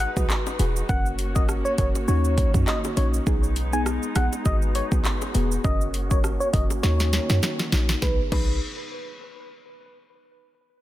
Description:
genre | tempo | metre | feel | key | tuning
dancehall | 101 BPM | 4/4 | swing 56% on 16ths | B major | A4 = 440 Hz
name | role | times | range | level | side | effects
soft struck synth lead | melody | 0.0-8.6 s | B4 to G#5 | -30 LUFS | left 1 dB | chorus, low-pass filter, tape echo
soft round pluck | accompaniment | 0.0-8.6 s | B3 to C#5 | -31 LUFS | left 1 dB | chorus, low-pass filter
muted studio string section | sustained chords | 0.0-8.3 s | B2 to B4 | -34 LUFS | equal | sidechain pumping, low-pass filter
short 808-style bass | bass | 0.0-8.6 s | E1 to F#2 | -24 LUFS | equal | none
afro-pop drum kit | drums | 0.0-8.5 s | crash cymbal, handclaps, hi-hat, kick drum, rim click, shaker, snare drum | -25 LUFS | equal | none
bongos | percussion | 0.3-8.6 s | none | -37 LUFS | left 7 dB | none
room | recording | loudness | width
digital ambience | dense, heavily limited modern master | -21 LUFS | side -14 dB against mid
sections
0.0-8.0 A section; 8.0-10.4 B section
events
filter sweep 0.0-8.0; drum fill 6.8-8.0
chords
0.0 G#m7; 0.9 F#; 2.1 D#m7; 3.3 B6; 4.5 G#m7; 5.6 F#; 6.8 D#m7; 8.0 B6

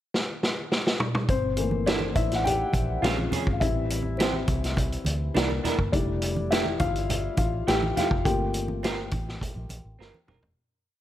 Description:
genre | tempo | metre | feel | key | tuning
lush 1970s-style soul | 104 BPM | 4/4 | straight | G dorian | A4 = 439 Hz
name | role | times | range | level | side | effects
vintage drum kit | drums | 0.1-10.6 s | hi-hat, kick drum, snare drum, toms | -27 LUFS | equal | none
dark baby grand piano | accompaniment | 1.3-10.6 s | Db3 to G5 | -28 LUFS | left 4 dB | none
vintage muted fingered electric bass | bass | 1.3-10.5 s | E1 to D2 | -30 LUFS | equal | none
congas | percussion | 1.3-10.4 s | none | -35 LUFS | right 3 dB | none
electric guitar through a small old amp | riff | 1.9-10.4 s | A3 to Db5 | -32 LUFS | right 7 dB | none
room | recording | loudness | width
light reverb, small room ambience | none | -24 LUFS | side -12 dB against mid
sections
0.0-1.3 pickup bar; 1.3-10.6 A section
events
drum fill 0.1-1.3, 10.0-10.6; grand piano solo 1.3-10.6; fade-out 8.3-10.6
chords
0.0 N.C.; 1.3 Gm69; 3.0 Bbm7; 3.6 Am7; 5.4 C9; 5.9 Fmaj9; 8.3 Gm11

